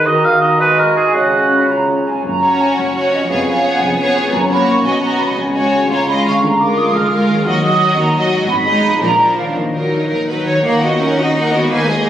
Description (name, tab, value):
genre	classical, dramatic, fast romantic movement for symphony orchestra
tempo	114 BPM (dotted quarters)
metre	6/8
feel	straight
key	F# major, Eb minor from 6.4 s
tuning	A4 = 440 Hz
part	bright clarinet	second line	0.0-2.1 s	E#4 to F#4	-21 LUFS	equal	none
part	warm oboe	second line	0.0-1.7 s	F#4 to E#5	-13 LUFS	right 2 dB	none
part	mellow bassoon	accompaniment	0.0-2.1 s	C#3 to G#3	-18 LUFS	right 2 dB	none
part	concert harp	arpeggios	0.0-12.1 s	E#2 to G#4	-21 LUFS	left 4 dB	none
part	mellow flute section	second line	0.1-10.1 s	D#5 to F6	-18 LUFS	right 2 dB	none
part	bright studio double bass section	bass	2.3-12.1 s	E#1 to Eb2	-26 LUFS	right 1 dB	none
part	rich symphonic cello section	bass	2.3-12.1 s	E#2 to Eb4	-22 LUFS	right 1 dB	none
part	rich symphonic violin section	melody	2.4-12.1 s	Bb4 to Ab5	-20 LUFS	equal	none
part	rich studio violin section	second line	2.4-12.1 s	D4 to Cb5	-21 LUFS	left 1 dB	none
part	rich symphonic viola section	accompaniment	2.4-12.1 s	F3 to Ab4	-20 LUFS	right 1 dB	none
room	wet scoring stage reverb, RT60 2.0 s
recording	recorded on a phone in the room, studio reverb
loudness	-12 LUFS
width	side -10 dB against mid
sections	0.0-2.3 A section; 2.3-10.6 B section; 10.6-12.1 A section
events	none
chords	0.1 D#m; 0.6 G#5; 1.1 C#sus4; 1.7 C#; 2.3 F#; 3.3 C#7/E#; 4.3 F#; 4.8 B; 5.4 C#sus4; 5.9 C#; 6.4 Bb7/D; 7.5 Ebm; 8.5 Abm; 9.0 Bb; 9.6 Ebm